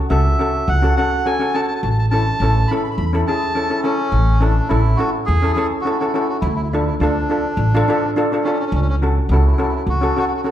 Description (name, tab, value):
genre	calypso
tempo	104 BPM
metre	4/4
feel	straight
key	A major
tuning	A4 = 440 Hz
part	melodica	melody	0.1-10.5 s	C#4 to B5	-23 LUFS	equal	none
part	steel pan	accompaniment	0.1-10.5 s	C#4 to A4	-20 LUFS	left 1 dB	none
part	upright bass	bass	0.1-10.1 s	A1 to E2	-18 LUFS	equal	none
room	wet recital hall reverb, RT60 1.4 s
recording	recorded in a church or concert hall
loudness	-15 LUFS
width	side -11 dB against mid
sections	0.0-4.1 A section; 4.1-10.5 A section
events	none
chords	0.0 F#m/C#; 1.8 A; 6.4 Dm; 8.7 F#m/C#